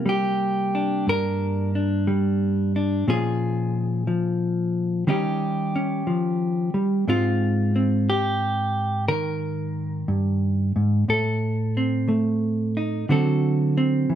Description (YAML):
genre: solo jazz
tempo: 60 BPM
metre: 4/4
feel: swing 67% on 8ths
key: unclear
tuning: A4 = 440 Hz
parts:
  - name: hollow-body jazz guitar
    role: solo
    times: 0.0-14.2 s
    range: G2 to Bb4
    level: -21 LUFS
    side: equal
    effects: none
room: light reverb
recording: band playing live in one room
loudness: -21 LUFS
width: side -10 dB against mid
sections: 0.0-14.2 A section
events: none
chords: 0.0 Csus2; 3.1 Bbm7; 5.1 Eb7; 7.1 Abmaj7; 11.1 Adim; 13.1 D7